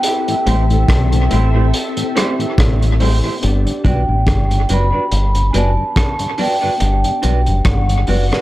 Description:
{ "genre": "lovers rock reggae", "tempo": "71 BPM", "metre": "4/4", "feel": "swing 56% on 16ths", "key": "G major", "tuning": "A4 = 436 Hz", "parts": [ { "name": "vibraphone with soft mallets", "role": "melody", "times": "0.0-8.4 s", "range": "F#5 to B5", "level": "-21 LUFS", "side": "right 1 dB", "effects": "tape echo" }, { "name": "soft string machine", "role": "second line", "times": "0.0-3.4 s", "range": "C4 to E5", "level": "-24 LUFS", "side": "left 1 dB", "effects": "ensemble chorus" }, { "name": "barky tine electric piano", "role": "accompaniment", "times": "0.0-8.4 s", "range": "B3 to E5", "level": "-27 LUFS", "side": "left 1 dB", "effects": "overdrive, ensemble chorus" }, { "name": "crunchy breakbeat drum kit", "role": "drums", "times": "0.0-8.4 s", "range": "hi-hat, kick drum, rim click", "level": "-19 LUFS", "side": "equal", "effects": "dub echo" }, { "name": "mellow tonewheel organ", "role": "accompaniment", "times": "0.3-8.4 s", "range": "G2 to C4", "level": "-24 LUFS", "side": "left 3 dB", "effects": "slow rotary speaker" }, { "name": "electric guitar through a small old amp", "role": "stabs", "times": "0.5-8.4 s", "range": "A3 to D5", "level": "-24 LUFS", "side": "right 4 dB", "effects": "none" }, { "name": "deep dub fingered electric bass", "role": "bass", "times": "0.5-8.3 s", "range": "F#1 to B1", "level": "-14 LUFS", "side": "equal", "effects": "none" } ], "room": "small room reverb", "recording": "dark, warm production", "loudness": "-13 LUFS", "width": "side -16 dB against mid", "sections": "0.0-3.4 A section; 3.4-8.4 B section", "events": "none", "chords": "0.0 Am7; 3.4 Gmaj7" }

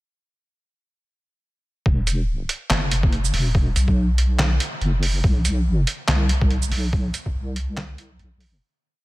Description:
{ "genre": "deep dubstep", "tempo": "142 BPM", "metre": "4/4", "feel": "swing 56% on 16ths, half-time", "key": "unclear", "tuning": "A4 = 440 Hz", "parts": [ { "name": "deep soft wobble bass", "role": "bass", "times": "1.9-8.6 s", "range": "E1 to C2", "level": "-20 LUFS", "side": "equal", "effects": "chorus" }, { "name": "electronic kick drum", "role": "drums", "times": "1.9-7.3 s", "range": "none", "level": "-20 LUFS", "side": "equal", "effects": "none" }, { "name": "trip hop sampler-style drum kit", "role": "drums", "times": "2.1-8.5 s", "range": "handclaps, hi-hat, shaker, snare drum", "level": "-25 LUFS", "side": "right 1 dB", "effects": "none" } ], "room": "little or no reverb", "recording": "none", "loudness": "-19 LUFS", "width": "side -19 dB against mid", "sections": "1.9-8.6 drop", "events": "drop 1.9-8.6; fade-out 6.4-8.6", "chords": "none" }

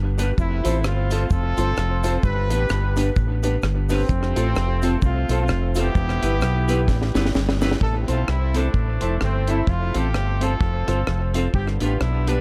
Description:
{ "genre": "ska", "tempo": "129 BPM", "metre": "4/4", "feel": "swing 58% on 8ths", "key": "A minor", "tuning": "A4 = 440 Hz", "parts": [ { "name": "fingered electric bass", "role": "bass", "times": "0.0-12.4 s", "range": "E1 to C2", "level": "-24 LUFS", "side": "equal", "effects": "none" }, { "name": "clean electric guitar", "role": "accompaniment", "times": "0.2-12.4 s", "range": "C4 to C5", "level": "-33 LUFS", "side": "equal", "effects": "warbly pitch drift, analog delay" }, { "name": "clear upright piano", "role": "stabs", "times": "0.2-12.4 s", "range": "B3 to C5", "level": "-31 LUFS", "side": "equal", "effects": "analog delay" }, { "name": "deep reggae drum kit", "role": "drums", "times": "0.2-12.4 s", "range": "hi-hat, kick drum, rim click, snare drum", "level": "-27 LUFS", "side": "equal", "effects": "analog delay" }, { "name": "cabasa", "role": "percussion", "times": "0.2-7.7 s", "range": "none", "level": "-48 LUFS", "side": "equal", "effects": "none" }, { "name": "clear horn section", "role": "melody", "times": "0.4-12.4 s", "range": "F3 to B4", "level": "-30 LUFS", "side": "equal", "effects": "analog delay" } ], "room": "studio reverb", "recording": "none", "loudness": "-21 LUFS", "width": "mono", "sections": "0.0-7.8 A section; 7.8-12.4 B section", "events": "drum fill 6.9-7.8", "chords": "0.4 F; 2.2 G; 4.1 F; 6.0 Em; 7.8 Am; 9.7 F; 11.5 G" }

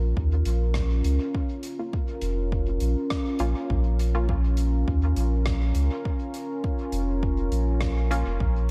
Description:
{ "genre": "ambient dub", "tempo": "102 BPM", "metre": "4/4", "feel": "swing 55% on 16ths", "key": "Bb minor", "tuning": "A4 = 440 Hz", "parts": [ { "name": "deep dark ambient pad", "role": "sustained chords", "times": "0.0-8.7 s", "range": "Db4 to Bb4", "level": "-33 LUFS", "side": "equal", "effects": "chorus, built-in reverb" }, { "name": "warm sub bass", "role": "bass", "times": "0.0-8.7 s", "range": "F1 to Eb2", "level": "-26 LUFS", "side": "equal", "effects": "none" }, { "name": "electronic kick drum", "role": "drums", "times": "0.2-8.5 s", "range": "none", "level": "-31 LUFS", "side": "equal", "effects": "overdrive" }, { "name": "soft-mallet drum kit", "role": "drums", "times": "0.5-8.2 s", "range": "hi-hat, rim click", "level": "-42 LUFS", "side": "equal", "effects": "dub echo" }, { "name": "filtered dub chord stab", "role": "stabs", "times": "1.8-4.3, 8.1-8.3 s", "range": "Bb3 to F4", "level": "-38 LUFS", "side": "equal", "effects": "chorus, dub echo" } ], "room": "light reverb, studio ambience", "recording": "none", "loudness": "-26 LUFS", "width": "mono", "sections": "0.0-8.7 A section", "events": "none", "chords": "0.0 Bbm" }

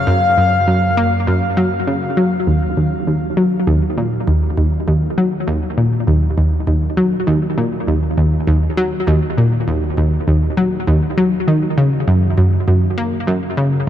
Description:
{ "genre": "ambient, sequencer-driven space music", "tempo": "100 BPM", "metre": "4/4", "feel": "straight", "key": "Eb minor", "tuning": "A4 = 440 Hz", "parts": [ { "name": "breathy flute-like synth lead", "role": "melody", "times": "0.0-1.9 s", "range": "F5", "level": "-19 LUFS", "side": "left 2 dB", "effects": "tremolo, lush chorus, tape echo" }, { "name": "analog drone", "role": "bass", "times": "0.0-2.4 s", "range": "Gb2", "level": "-23 LUFS", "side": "equal", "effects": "chorus" }, { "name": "analog pluck", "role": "riff", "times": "0.1-13.8 s", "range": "Eb2 to Bb3", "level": "-14 LUFS", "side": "equal", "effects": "chorus, tape echo" } ], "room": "wet huge ambient reverb, RT60 8.2 s", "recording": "dark, warm production", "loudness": "-14 LUFS", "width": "side -10 dB against mid", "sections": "0.0-2.5 A section; 2.5-13.9 B section", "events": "none", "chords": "0.0 Gbmaj7(no3); 2.5 Ebm; 12.1 Gb" }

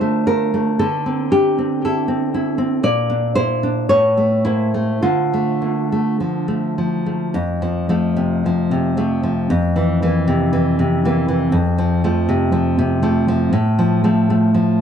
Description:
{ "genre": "romantic piece for solo classical guitar", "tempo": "51-63 BPM", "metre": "2/4", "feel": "rubato", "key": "D minor, F major from 7.4 s", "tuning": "A4 = 441 Hz", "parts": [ { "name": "nylon-string guitar", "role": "solo", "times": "0.0-14.8 s", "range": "F2 to D5", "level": "-15 LUFS", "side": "equal", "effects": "tape echo" } ], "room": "little or no reverb", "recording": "dry, close 1970s-style studio recording", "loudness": "-15 LUFS", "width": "side -8 dB against mid", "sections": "0.0-7.4 A section; 7.4-14.8 B section", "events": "none", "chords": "0.0 Dm; 0.8 Am/D; 2.9 Bb; 3.9 A; 5.0 Dm; 7.4 F; 9.5 C7/F; 11.6 F; 13.5 F/A" }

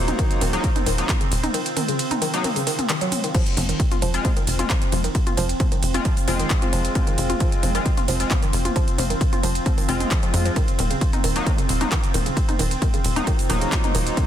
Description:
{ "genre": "driving peak-time techno", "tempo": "133 BPM", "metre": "4/4", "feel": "straight", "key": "F phrygian", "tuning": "A4 = 438 Hz", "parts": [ { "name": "sync-sweep polysynth", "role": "stabs", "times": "0.0-14.3 s", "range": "Gb3 to F4", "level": "-28 LUFS", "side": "left 3 dB", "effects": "chorus, sidechain pumping, ping-pong delay" }, { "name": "tight sequencer bass", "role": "bass", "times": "0.0-14.1 s", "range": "Eb1 to F2", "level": "-24 LUFS", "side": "equal", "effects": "sidechain pumping" }, { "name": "deep dark ambient pad", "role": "drone", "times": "0.0-14.3 s", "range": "C4 to F4", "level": "-29 LUFS", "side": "right 1 dB", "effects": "chorus, built-in reverb, sidechain pumping" }, { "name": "woody wave-folded pluck", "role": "riff", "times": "0.1-14.2 s", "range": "Db3 to F4", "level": "-28 LUFS", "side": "equal", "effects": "chorus, sidechain pumping, ping-pong delay" }, { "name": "techno drum kit", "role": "drums", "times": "0.1-14.3 s", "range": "crash cymbal, handclaps, hi-hat, ride cymbal, toms", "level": "-26 LUFS", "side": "equal", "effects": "sidechain pumping on hats, sidechain pumping on cymbals, sidechain pumping on toms" }, { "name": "electronic kick drum", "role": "drums", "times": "0.2-14.3 s", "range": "none", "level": "-22 LUFS", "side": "equal", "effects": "none" } ], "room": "light reverb", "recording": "dense, heavily limited modern master", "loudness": "-19 LUFS", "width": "side -10 dB against mid", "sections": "0.0-14.3 A section", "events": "none", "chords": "0.0 Ebm; 3.3 Fm; 10.6 Ebm" }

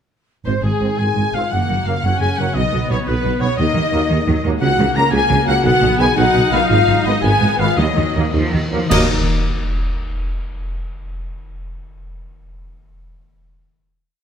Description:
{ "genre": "cinematic, heroic adventure film score", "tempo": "105-117 BPM (dotted quarters)", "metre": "12/8", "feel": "straight", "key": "Eb minor", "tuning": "A4 = 441 Hz", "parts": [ { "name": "rich symphonic violin section", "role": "melody", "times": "0.5-9.1 s", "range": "Ab4 to Bb5", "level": "-23 LUFS", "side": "left 4 dB", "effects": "none" }, { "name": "clear oboe", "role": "second line", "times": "0.5-9.1 s", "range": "Ab4 to Bb5", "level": "-26 LUFS", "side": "equal", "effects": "none" }, { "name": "mellow hollow flute section", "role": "second line", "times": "0.5-9.1 s", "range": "Ab4 to Bb5", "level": "-25 LUFS", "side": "equal", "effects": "none" }, { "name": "rich symphonic violin section", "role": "second line", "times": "0.5-9.1 s", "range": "Ab4 to Bb5", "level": "-26 LUFS", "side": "left 1 dB", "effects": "none" }, { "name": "dark French horn section", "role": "sustained chords", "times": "0.5-9.1 s", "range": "Ab3 to Bb4", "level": "-23 LUFS", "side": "left 5 dB", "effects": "none" }, { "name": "concert harp", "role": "arpeggios", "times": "0.5-11.1 s", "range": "Gb2 to Eb5", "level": "-26 LUFS", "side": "left 9 dB", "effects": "none" }, { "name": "dark symphonic double bass section", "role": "bass", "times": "0.5-9.1 s", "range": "Gb1 to Eb2", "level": "-22 LUFS", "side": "right 3 dB", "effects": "none" }, { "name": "mellow tuba", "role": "bass", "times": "0.5-9.1 s", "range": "Gb1 to Eb2", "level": "-23 LUFS", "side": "right 4 dB", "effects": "none" }, { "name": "rich symphonic cello section", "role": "bass", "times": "0.5-9.1 s", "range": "Eb2 to F3", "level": "-23 LUFS", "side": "right 2 dB", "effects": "none" }, { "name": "warm trombone section", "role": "sustained chords", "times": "0.8-9.1 s", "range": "Eb3 to C4", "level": "-28 LUFS", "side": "right 4 dB", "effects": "none" }, { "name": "clear symphonic viola section", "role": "accompaniment", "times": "1.5-9.1 s", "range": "Gb3 to Bb4", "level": "-26 LUFS", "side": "left 1 dB", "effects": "none" }, { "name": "cymbal swell, clash cymbals and concert bass drum", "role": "percussion", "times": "4.6-9.6 s", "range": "none", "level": "-24 LUFS", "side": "equal", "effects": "none" }, { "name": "timpani", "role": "percussion", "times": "7.8-9.1 s", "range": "Eb3", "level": "-27 LUFS", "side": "equal", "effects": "none" } ], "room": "light reverb", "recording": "none", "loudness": "-14 LUFS", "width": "side -8 dB against mid", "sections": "0.5-8.9 theme; 8.9-11.1 final chord", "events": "slowing down 5.3-8.9; band accent 8.9-9.3", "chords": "0.5 Ab; 1.5 Gb; 2.6 B; 3.6 Ebm; 4.6 Gb/Db; 5.7 B; 6.7 Abm; 7.8 Ebm" }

